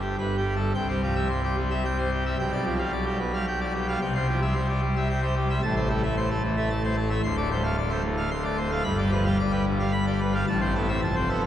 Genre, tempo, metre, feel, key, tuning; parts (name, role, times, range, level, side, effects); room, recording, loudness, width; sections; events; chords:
classical, organ toccata; 111 BPM; 3/4; straight; C major; A4 = 438 Hz
pipe organ, full organ; solo; 0.0-11.5 s; D1 to C6; -23 LUFS; equal
wet church reverb, RT60 4.0 s; recorded in a church or concert hall, vinyl crackle; -23 LUFS; side -11 dB against mid
0.7-11.5 A section
0.2 G; 0.7 C; 2.4 G7/B; 4.0 C; 5.6 Am; 7.2 Dm7; 8.8 G7; 10.5 Am